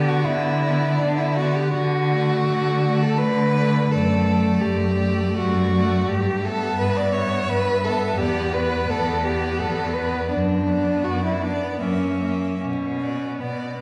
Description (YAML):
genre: classical, slow romantic movement for string quartet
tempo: 73-86 BPM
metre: 3/4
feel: rubato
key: B minor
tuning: A4 = 440 Hz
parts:
  - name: clear violin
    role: melody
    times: 0.0-13.8 s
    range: D5 to E5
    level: -34 LUFS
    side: equal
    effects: none
  - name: rich violin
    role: second line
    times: 0.0-13.8 s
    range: B3 to D5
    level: -26 LUFS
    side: equal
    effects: none
  - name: rich viola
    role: accompaniment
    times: 0.0-13.8 s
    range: A3 to B3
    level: -30 LUFS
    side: equal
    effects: none
  - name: clear cello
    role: bass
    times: 0.0-13.8 s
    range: E2 to D3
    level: -25 LUFS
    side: equal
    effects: none
room: wet recital hall reverb, RT60 1.6 s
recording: heard from further back in the room, vinyl crackle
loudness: -22 LUFS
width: mono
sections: 0.0-13.8 A section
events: none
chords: 0.0 Bm/D; 1.7 D; 3.9 D/F#; 6.1 G6; 8.2 E5; 10.3 Bm/F#; 11.8 F#7; 12.6 Bm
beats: 0.26 1.00 | 1.74 2.48 3.21 | 3.92 4.64 5.37 | 6.09 6.79 7.49 | 8.19 8.90 9.61 | 10.32 11.05 11.80 | 12.59 13.40